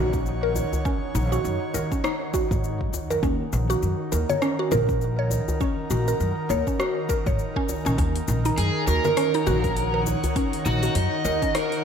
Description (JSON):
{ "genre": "organic downtempo", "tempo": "101 BPM", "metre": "4/4", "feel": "swing 58% on 16ths", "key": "Eb minor pentatonic", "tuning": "A4 = 440 Hz", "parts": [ { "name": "airy breathy pad", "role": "sustained chords", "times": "0.0-11.8 s", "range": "Eb3 to Gb5", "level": "-29 LUFS", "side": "right 2 dB", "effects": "chorus, sidechain pumping" }, { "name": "mallet-like synth pluck", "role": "arpeggios", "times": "0.0-11.7 s", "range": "Db4 to Db5", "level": "-27 LUFS", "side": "equal", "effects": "chorus, phaser, analog delay" }, { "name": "upright bass", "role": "bass", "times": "0.0-11.4 s", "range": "Bb1 to Ab2", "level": "-25 LUFS", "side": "equal", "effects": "tube saturation, sidechain pumping" }, { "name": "afro-pop drum kit", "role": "drums", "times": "0.1-11.8 s", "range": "congas, hi-hat, rim click, shaker", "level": "-32 LUFS", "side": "left 4 dB", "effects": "small room reverb" }, { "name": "electronic kick drum", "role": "drums", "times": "0.1-11.5 s", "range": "none", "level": "-27 LUFS", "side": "equal", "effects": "overdrive, small room reverb" }, { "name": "djembe", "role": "percussion", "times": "0.6-11.4 s", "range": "none", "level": "-34 LUFS", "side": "left 1 dB", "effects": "none" }, { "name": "overdriven slide guitar", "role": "melody", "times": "8.6-11.8 s", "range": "Gb4 to Eb5", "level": "-26 LUFS", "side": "right 2 dB", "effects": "wide subtle chorus, tape echo" } ], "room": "moderate plate reverb, RT60 1.9 s", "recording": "dreamy mix soaked in reverb", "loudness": "-21 LUFS", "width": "side -7 dB against mid", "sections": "0.0-11.8 A section", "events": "none", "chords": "0.0 Ebm7" }